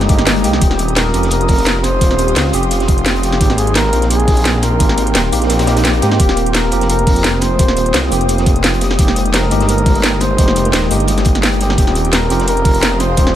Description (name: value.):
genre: liquid drum and bass.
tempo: 172 BPM.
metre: 4/4.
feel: swing 53% on 16ths.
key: Eb major.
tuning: A4 = 441 Hz.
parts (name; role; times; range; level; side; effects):
tine electric piano; accompaniment; 0.0-13.4 s; Ab3 to G5; -19 LUFS; equal; medium stereo tremolo.
ethereal airy pad; sustained chords; 0.0-13.4 s; Ab3 to Eb6; -24 LUFS; left 1 dB; ensemble chorus, built-in reverb, sidechain pumping.
swelling detuned saw bass; bass; 0.0-13.4 s; Eb1 to Ab2; -16 LUFS; equal; none.
crunchy breakbeat drum kit; drums; 0.0-13.3 s; hi-hat, snare drum; -26 LUFS; equal; high-pass filter on hats, high-pass filter on snare, high-pass filter on room.
garage drum kit; drums; 0.0-13.3 s; hi-hat, snare drum; -18 LUFS; equal; none.
electronic kick drum; drums; 0.1-13.2 s; none; -13 LUFS; equal; none.
breathy flugelhorn; melody; 0.4-13.4 s; G4 to C5; -20 LUFS; equal; digital delay.
swell; sound effects; 5.7-6.2 s; none; -28 LUFS; left 3 dB; none.
room: small room ambience.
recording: none.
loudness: -11 LUFS.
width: side -11 dB against mid.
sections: 0.0-13.4 A section.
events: kick drops out 5.5-6.2.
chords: 0.0 Fm11 (rootless); 0.6 Eb13; 3.4 Abmaj9; 6.2 Eb6; 9.0 Fm11; 11.8 Eb13.